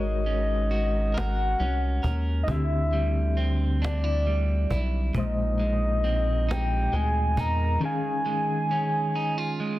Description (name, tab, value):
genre	slow six-eight R&B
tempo	45 BPM (dotted quarters)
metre	6/8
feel	straight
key	unclear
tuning	A4 = 441 Hz
part	soft octave-layered synth lead	melody	0.0-9.8 s	D5 to Bb5	-29 LUFS	equal	chorus
part	electric guitar at the edge of break-up	second line	0.0-9.8 s	Bb2 to Bb4	-31 LUFS	right 3 dB	none
part	bright reed electric piano	accompaniment	0.0-9.8 s	Bb2 to F5	-33 LUFS	left 4 dB	fast tremolo
part	rubbery square bass	bass	0.0-7.8 s	Ab1 to E2	-25 LUFS	equal	none
part	cajon	drums	0.3-7.6 s	none	-31 LUFS	equal	none
room	light reverb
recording	dense, heavily limited modern master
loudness	-23 LUFS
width	side -16 dB against mid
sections	0.0-9.8 A section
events	none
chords	0.0 Ab9sus4; 2.5 D9sus4; 5.1 Bb9sus4; 7.8 Eb9sus4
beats	1.15 | 2.48 3.81 | 5.14 6.48 | 7.81 9.14